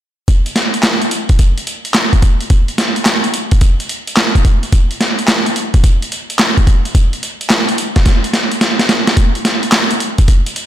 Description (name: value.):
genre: R&B.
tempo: 108 BPM.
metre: 4/4.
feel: swing 66% on 16ths.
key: none.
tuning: none.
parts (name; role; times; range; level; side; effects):
boom bap sampler-style drum kit; drums; 0.3-10.7 s; handclaps, hi-hat, kick drum, snare drum; -11 LUFS; equal; none.
room: light reverb.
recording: none.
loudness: -11 LUFS.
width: side -12 dB against mid.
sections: 0.3-9.2 A section; 9.2-10.7 B section.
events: drum fill 8.1-9.2.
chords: none.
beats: | 0.28 0.84 1.39 1.95 | 2.50 3.06 3.61 4.17 | 4.72 5.28 5.84 6.39 | 6.95 7.50 8.06 8.61 | 9.17 9.72 10.28.